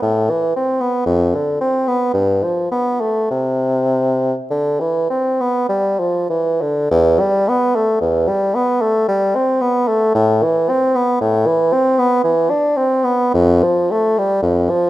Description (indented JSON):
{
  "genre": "classical, baroque-style fantasia for unaccompanied bassoon",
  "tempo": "48-59 BPM",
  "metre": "3/4",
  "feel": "rubato",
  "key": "unclear",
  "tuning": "A4 = 440 Hz",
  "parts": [
    { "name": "warm bassoon", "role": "solo", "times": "0.0-14.9 s", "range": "E2 to D4", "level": "-14 LUFS", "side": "equal", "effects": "none" }
  ],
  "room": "moderate recital hall reverb, RT60 1.6 s",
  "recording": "close, detailed microphones",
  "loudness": "-14 LUFS",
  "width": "side -15 dB against mid",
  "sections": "0.0-6.9 A section; 6.9-14.9 A section",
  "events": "none",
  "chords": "none"
}